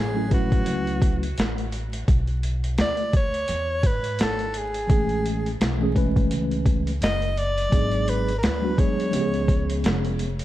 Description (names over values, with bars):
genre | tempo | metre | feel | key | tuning
hip hop, jazz-hop | 85 BPM | 4/4 | swing 58% on 16ths | unclear | A4 = 440 Hz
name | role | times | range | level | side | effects
bright soprano saxophone | melody | 0.0-9.8 s | F#4 to D#5 | -28 LUFS | equal | analog delay
upright bass | bass | 0.0-10.4 s | E#1 to G#2 | -27 LUFS | equal | none
mellow tine electric piano | accompaniment | 0.1-10.3 s | E3 to B4 | -26 LUFS | equal | medium stereo tremolo
boom bap sampler-style drum kit | drums | 0.3-10.4 s | hi-hat, kick drum, snare drum | -23 LUFS | equal | overdrive
room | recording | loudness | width
light reverb | dark, warm production, vinyl crackle | -21 LUFS | side -14 dB against mid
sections
0.0-10.4 A section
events
soprano saxophone solo 0.0-10.4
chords
0.0 F#m7; 2.1 Bm; 3.5 E; 4.9 Amaj7; 7.7 G#m7b5; 9.1 C#7